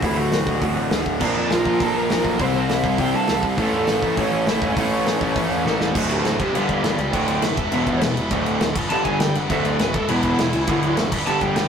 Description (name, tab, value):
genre	punk rock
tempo	203 BPM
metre	4/4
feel	straight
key	unclear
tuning	A4 = 440 Hz
part	lead guitar through a small cranked amp	melody	0.0-11.7 s	A3 to Bb5	-25 LUFS	right 1 dB	overdrive
part	crunchy overdriven guitar	riff	0.0-11.7 s	D2 to C4	-25 LUFS	left 4 dB	none
part	raw garage guitar	riff	0.0-11.7 s	D2 to C4	-25 LUFS	right 4 dB	overdrive
part	fuzz picked electric bass	bass	0.0-11.7 s	D1 to G2	-28 LUFS	equal	overdrive
part	loose indie drum kit	drums	0.0-11.6 s	crash cymbal, hi-hat, kick drum, snare drum	-25 LUFS	left 1 dB	none
part	high-gain distorted guitar	riff	1.2-11.7 s	D2 to C5	-26 LUFS	right 2 dB	distortion
room	moderate stone room reverb, RT60 1.0 s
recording	rough rehearsal-room recording, tube saturation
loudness	-18 LUFS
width	side -7 dB against mid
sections	0.0-5.9 A section; 5.9-11.7 B section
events	drum fill 5.7; lead electric guitar solo 5.9-11.7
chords	0.0 D; 1.2 Bb; 2.4 C; 3.6 A; 5.9 D; 6.4 G; 7.1 D; 7.6 Em; 8.3 D; 8.8 G; 9.5 D; 9.9 Em; 10.7 D; 11.1 G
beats	| 0.02 0.32 0.61 0.91 | 1.21 1.50 1.80 2.10 | 2.39 2.69 2.98 3.28 | 3.58 3.88 4.17 4.47 | 4.76 5.06 5.36 5.65 | 5.95 6.24 6.54 6.83 | 7.13 7.43 7.72 8.02 | 8.31 8.61 8.90 9.20 | 9.49 9.79 10.09 10.38 | 10.68 10.97 11.27 11.56